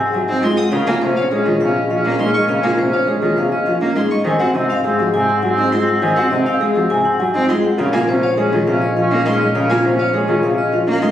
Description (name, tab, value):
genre	classical, minimalist pattern music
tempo	102 BPM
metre	3/4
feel	straight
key	Bb minor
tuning	A4 = 440 Hz
part	vibraphone with hard mallets	melody	0.0-11.1 s	Ab4 to Ab5	-20 LUFS	left 3 dB	none
part	warm oboe	second line	0.0-11.1 s	C4 to Db4	-22 LUFS	right 2 dB	none
part	dark baby grand piano	arpeggios	0.0-11.1 s	C4 to C5	-20 LUFS	equal	none
part	clear chamber double bass section	bass	0.0-11.1 s	Bb1 to Ab2	-25 LUFS	right 1 dB	none
part	rich cello	accompaniment	0.1-11.1 s	C3 to C4	-21 LUFS	equal	none
part	dark violin	arpeggios	0.3-11.1 s	Eb5 to Eb6	-29 LUFS	left 2 dB	none
room	wet scoring stage reverb, RT60 1.4 s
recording	recorded on a phone in the room, club reverb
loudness	-14 LUFS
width	side -11 dB against mid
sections	0.0-11.1 A section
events	none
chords	0.0 Ab7; 0.7 Bbm9; 4.3 Ab7; 7.8 Bbm9